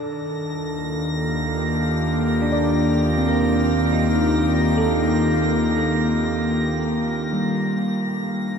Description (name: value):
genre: ambient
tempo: 60 BPM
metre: 4/4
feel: straight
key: unclear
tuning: A4 = 440 Hz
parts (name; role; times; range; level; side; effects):
- airy breathy pad; sustained chords; 0.0-8.6 s; Eb3 to A4; -21 LUFS; right 1 dB; chorus, shimmer reverb
- round analog bass; bass; 0.0-8.6 s; Eb2 to G2; -29 LUFS; left 1 dB; none
- drifting glass-harmonics texture; texture; 0.1-8.6 s; Bb6; -30 LUFS; right 1 dB; chorus, built-in reverb, shimmer reverb
- tine electric piano; arpeggios; 2.4-8.6 s; G3 to D5; -24 LUFS; equal; analog chorus, ping-pong delay, shimmer reverb
room: wet cathedral reverb, RT60 6.8 s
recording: in a vast, echoing space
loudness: -19 LUFS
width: side -6 dB against mid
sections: 0.0-8.6 A section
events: fade-out 5.1-8.6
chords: 0.0 Ebmaj7; 7.8 Gm7